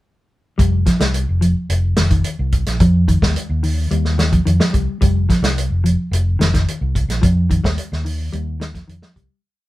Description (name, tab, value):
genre	afrobeat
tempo	108 BPM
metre	4/4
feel	straight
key	unclear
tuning	A4 = 441 Hz
part	mellow electric guitar	arpeggios	0.6-9.4 s	Eb3 to G3	-20 LUFS	left 1 dB	none
part	fingered electric bass	bass	0.6-9.3 s	F1 to F2	-18 LUFS	equal	none
part	warm soul drum kit	drums	0.6-9.3 s	hi-hat, kick drum, snare drum	-18 LUFS	equal	none
room	light reverb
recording	band playing live in one room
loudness	-15 LUFS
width	side -17 dB against mid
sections	0.6-9.4 groove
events	fade-out 7.2-9.4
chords	0.6 Fsus2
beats	| 0.58 1.14 1.69 2.24 | 2.80 3.35 3.90 4.46 | 5.01 5.57 6.12 6.67 | 7.23 7.78 8.33 8.88